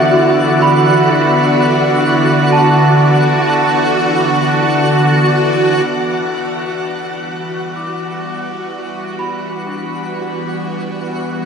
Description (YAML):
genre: ambient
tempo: 63 BPM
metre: 4/4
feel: straight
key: E minor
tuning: A4 = 440 Hz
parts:
  - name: evolving wavetable pad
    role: sustained chords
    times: 0.0-11.5 s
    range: D3 to D5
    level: -14 LUFS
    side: equal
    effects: phaser, built-in reverb
  - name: large celesta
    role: arpeggios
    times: 0.0-11.5 s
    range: D4 to D6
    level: -19 LUFS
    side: right 2 dB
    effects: tape echo
  - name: organ-like drone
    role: drone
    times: 0.0-6.0 s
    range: E3 to B3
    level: -22 LUFS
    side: right 1 dB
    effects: ensemble chorus, built-in reverb
  - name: twinkling granular texture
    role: texture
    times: 0.0-11.5 s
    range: F#4 to F#5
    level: -21 LUFS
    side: left 1 dB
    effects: built-in reverb
room: wet shimmer reverb, RT60 7.4 s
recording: none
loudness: -12 LUFS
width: side -6 dB against mid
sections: 0.0-5.9 A section; 5.9-11.5 B section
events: none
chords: 0.0 D; 5.9 Em7